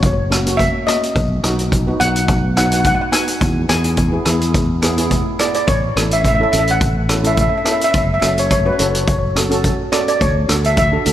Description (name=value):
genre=calypso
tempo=106 BPM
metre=4/4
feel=swing 54% on 16ths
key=A major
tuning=A4 = 440 Hz
part: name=steel pan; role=melody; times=0.0-11.1 s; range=C#5 to G#5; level=-18 LUFS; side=equal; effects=slapback echo, tape echo
part: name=steel pan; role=accompaniment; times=0.0-11.1 s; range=A#3 to B4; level=-21 LUFS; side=equal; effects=slapback echo
part: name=fretless electric bass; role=bass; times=0.0-11.1 s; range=F#1 to E2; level=-19 LUFS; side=equal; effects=none
part: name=street-band drum kit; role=drums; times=0.0-11.1 s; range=hi-hat, kick drum, rim click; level=-18 LUFS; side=equal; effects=none
room=moderate lush hall reverb, RT60 1.8 s, studio reverb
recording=big arena sound, lossy compression artefacts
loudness=-14 LUFS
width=side -12 dB against mid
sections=0.0-11.1 A section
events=none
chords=0.0 F#; 1.2 B; 3.4 E; 5.7 A; 7.9 F#m; 10.2 D